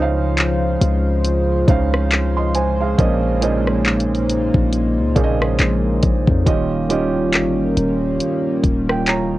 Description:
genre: contemporary R&B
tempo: 69 BPM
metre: 4/4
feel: swing 58% on 16ths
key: Bb minor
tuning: A4 = 438 Hz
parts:
  - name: felt-muted upright piano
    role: accompaniment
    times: 0.0-9.4 s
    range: Bb2 to C6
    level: -22 LUFS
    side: right 4 dB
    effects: cassette tape
  - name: chorused pulse-width pad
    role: sustained chords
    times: 0.0-9.4 s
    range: Db3 to C5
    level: -20 LUFS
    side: left 1 dB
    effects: cassette tape
  - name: warm 808-style bass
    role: bass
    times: 0.0-9.4 s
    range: Eb1 to F2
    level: -20 LUFS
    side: left 1 dB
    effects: none
  - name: smooth R&B drum kit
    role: drums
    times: 0.4-9.3 s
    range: handclaps, hi-hat, kick drum, rim click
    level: -18 LUFS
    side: left 1 dB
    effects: cassette tape
room: little or no reverb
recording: home recording on cassette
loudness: -15 LUFS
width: side -16 dB against mid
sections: 0.0-9.4 A section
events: none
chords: 0.0 Dbmaj7; 3.0 Bbm11; 6.5 Eb9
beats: 0.38 1.25 2.12 | 2.98 3.85 4.72 5.59 | 6.46 7.33 8.20 9.07

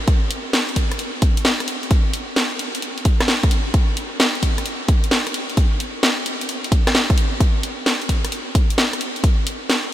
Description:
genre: UK garage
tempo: 131 BPM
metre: 4/4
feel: swing 67% on 16ths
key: none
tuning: none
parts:
  - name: electronic kick drum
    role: drums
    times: 0.1-9.4 s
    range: none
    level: -17 LUFS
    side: equal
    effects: none
  - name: house drum kit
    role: drums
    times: 0.1-9.8 s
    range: hi-hat, rim click, snare drum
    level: -20 LUFS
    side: equal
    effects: none
room: moderate huge ambient reverb, RT60 7.3 s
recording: dreamy mix soaked in reverb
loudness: -17 LUFS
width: side -13 dB against mid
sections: 0.0-9.9 A section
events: none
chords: none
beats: | 0.08 0.54 0.99 1.45 | 1.91 2.37 2.83 3.28 | 3.74 4.20 4.66 5.12 | 5.57 6.03 6.49 6.95 | 7.41 7.86 8.32 8.78 | 9.24 9.70

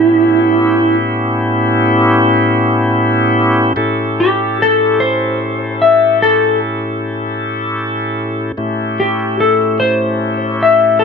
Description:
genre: blues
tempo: 50 BPM (dotted quarters)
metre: 12/8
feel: straight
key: A mixolydian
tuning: A4 = 439 Hz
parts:
  - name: clean lap steel guitar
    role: melody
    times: 0.0-11.0 s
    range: E4 to E5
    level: -12 LUFS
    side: left 1 dB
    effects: none
  - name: bright tonewheel organ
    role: sustained chords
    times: 0.0-11.0 s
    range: A2 to A4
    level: -14 LUFS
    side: left 1 dB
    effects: slow rotary speaker
room: moderate club reverb, RT60 0.5 s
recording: none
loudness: -11 LUFS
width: side -5 dB against mid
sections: 0.0-3.8 A section; 3.8-11.0 B section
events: electric slide guitar solo 0.0-3.8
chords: 0.0 A9; 3.8 A7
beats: 0.18 1.37 2.57 | 3.76 4.96 6.16 7.36 | 8.55 9.76 10.96

